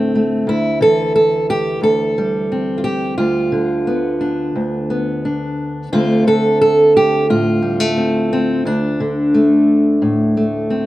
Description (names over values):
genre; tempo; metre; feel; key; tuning
folk, solo fingerstyle acoustic guitar; 88 BPM; 4/4; straight; D dorian; A4 = 439 Hz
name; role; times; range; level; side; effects
fingerpicked steel-string acoustic guitar; solo; 0.0-10.9 s; D2 to A4; -14 LUFS; equal; none
room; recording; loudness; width
little or no reverb; recorded outdoors, with no room sound; -14 LUFS; side -16 dB against mid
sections
0.0-10.9 A section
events
none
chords
0.5 Am7/D; 3.2 G7/D; 5.9 Dm7